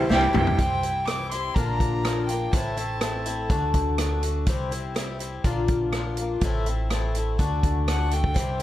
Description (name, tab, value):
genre	folk rock and heartland rock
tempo	124 BPM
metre	4/4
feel	straight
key	C mixolydian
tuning	A4 = 439 Hz
part	clear fiddle	melody	0.0-3.5, 7.9-8.6 s	C5 to D6	-29 LUFS	right 1 dB	tape echo
part	picked twelve-string acoustic guitar	accompaniment	0.0-8.6 s	A2 to G4	-28 LUFS	left 4 dB	none
part	electric guitar through a small old amp	riff	0.0-0.6 s	C3 to G4	-24 LUFS	right 1 dB	tremolo
part	upright bass	bass	0.0-8.6 s	A1 to D2	-28 LUFS	equal	none
part	bright baby grand piano	accompaniment	0.1-0.5 s	G4 to E5	-32 LUFS	left 3 dB	none
part	vintage drum kit	drums	0.1-8.6 s	hi-hat, kick drum, rim click, snare drum, toms	-26 LUFS	equal	none
room	small room ambience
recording	none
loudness	-22 LUFS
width	side -13 dB against mid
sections	0.6-8.6 A section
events	drum fill 0.1-0.6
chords	0.0 C; 1.6 Bb; 2.5 Am; 3.5 D; 4.5 C; 5.4 Bb; 6.4 Am; 7.4 D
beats	0.11 | 0.59 1.08 1.56 2.05 | 2.53 3.02 3.50 3.99 | 4.47 4.96 5.45 5.93 | 6.42 6.91 7.39 7.88 | 8.36